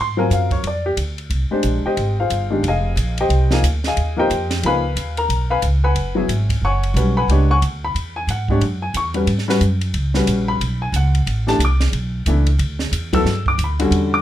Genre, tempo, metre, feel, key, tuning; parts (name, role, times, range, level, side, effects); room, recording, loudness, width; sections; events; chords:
modal jazz; 181 BPM; 4/4; swing 62% on 8ths; A4 = 440 Hz
warm baby grand piano; accompaniment; 0.0-14.2 s; D3 to E6; -20 LUFS; left 2 dB
upright bass; bass; 0.0-14.2 s; F1 to Ab2; -19 LUFS; right 1 dB
compact cocktail drum kit; drums; 0.3-14.0 s; hi-hat, kick drum, ride cymbal, snare drum; -27 LUFS; right 2 dB
moderate studio ambience, RT60 0.5 s; -16 LUFS; side -12 dB against mid
0.0-6.0 A section; 6.0-14.2 A section
0.0 Ebm9 (rootless); 0.6 Fm9; 4.6 Db9; 6.0 F#9sus4; 11.3 A9sus4